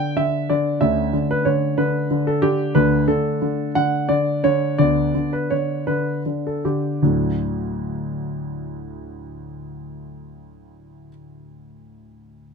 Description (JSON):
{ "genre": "classical-period piano sonatina", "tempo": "50-62 BPM (dotted quarters)", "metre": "6/8", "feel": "straight", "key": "D major", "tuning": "A4 = 439 Hz", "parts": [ { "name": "clear concert grand piano", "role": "solo", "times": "0.0-12.5 s", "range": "D2 to G5", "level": "-19 LUFS", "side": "equal", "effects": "none" } ], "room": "light reverb", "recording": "close, detailed microphones", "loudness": "-18 LUFS", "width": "side -5 dB against mid", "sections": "0.0-7.0 A section; 7.0-11.7 B section", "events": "slowing down 1.8-7.0", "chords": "0.0 G6/D; 0.8 A/D; 2.8 D5; 4.8 G/D; 7.0 D" }